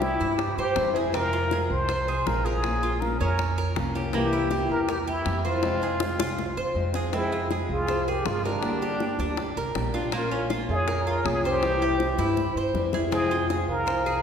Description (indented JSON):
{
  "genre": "latin, Cuban son and guajira",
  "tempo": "160 BPM",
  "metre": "4/4",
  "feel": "straight",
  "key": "F harmonic minor",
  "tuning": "A4 = 440 Hz",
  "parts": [
    { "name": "trumpet with plunger mute", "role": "melody", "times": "0.0-14.2 s", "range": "D4 to C5", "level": "-29 LUFS", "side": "equal", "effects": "none" },
    { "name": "picked old ladder-braced acoustic guitar", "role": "accompaniment", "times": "0.0-13.9 s", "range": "C3 to G4", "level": "-30 LUFS", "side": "left 3 dB", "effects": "none" },
    { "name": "Cuban tres", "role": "arpeggios", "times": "0.0-14.2 s", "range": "Bb3 to C5", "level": "-30 LUFS", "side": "right 1 dB", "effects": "none" },
    { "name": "upright bass", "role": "bass", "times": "0.0-14.2 s", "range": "G1 to G2", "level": "-30 LUFS", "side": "right 1 dB", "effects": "none" },
    { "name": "bongos", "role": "percussion", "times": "0.0-14.1 s", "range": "none", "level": "-33 LUFS", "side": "left 4 dB", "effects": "none" },
    { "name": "bansuri", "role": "second line", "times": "7.1-14.2 s", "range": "G4 to F5", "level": "-33 LUFS", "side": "right 1 dB", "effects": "none" }
  ],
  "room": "wet church reverb, RT60 2.7 s",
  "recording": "recorded in a church or concert hall",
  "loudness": "-23 LUFS",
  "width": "side -7 dB against mid",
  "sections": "0.0-7.1 A section; 7.1-14.2 A section",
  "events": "drum fill 6.0-7.1, 12.2-13.1",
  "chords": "0.0 C; 1.1 Fm; 2.6 Bbm; 4.1 C7; 5.6 Fm; 8.6 Gm; 10.1 Bbm; 11.6 C; 13.1 Fm"
}